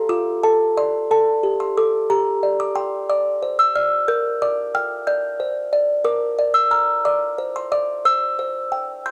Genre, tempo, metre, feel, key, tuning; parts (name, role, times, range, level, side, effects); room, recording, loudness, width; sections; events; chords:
classical, lullaby for music box; 60 BPM (dotted quarters); 6/8; rubato; A4 = 442 Hz
music box; solo; 0.0-9.1 s; F4 to G6; -20 LUFS; equal; cassette tape
light reverb, small room reverb; home recording on cassette; -20 LUFS; mono
0.0-9.1 A section
0.1 Dm/F; 2.1 G5; 4.1 Gm/Bb; 6.1 Bb; 8.1 C